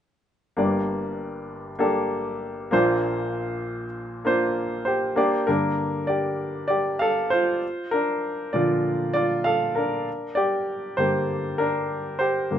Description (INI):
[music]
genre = pop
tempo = 98 BPM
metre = 4/4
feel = straight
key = G minor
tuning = A4 = 439 Hz
[part]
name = clear baby grand piano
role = accompaniment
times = 0.6-12.6 s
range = G1 to F5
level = -22 LUFS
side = equal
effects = none
[sound]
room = wet studio reverb, RT60 0.6 s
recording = rough home demo mix, nothing above 10.3 kHz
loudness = -22 LUFS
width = side -9 dB against mid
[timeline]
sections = 0.6-5.5 A section; 5.5-12.6 B section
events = grand piano solo 5.5-12.6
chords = 0.6 Gm; 2.7 Bbadd9; 5.2 Gm; 7.6 Bb; 10.1 Gm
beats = | 0.58 1.19 1.80 2.42 | 3.03 3.64 4.25 4.87 | 5.48 6.09 6.70 7.32 | 7.93 8.54 9.15 9.77 | 10.38 10.99 11.60 12.21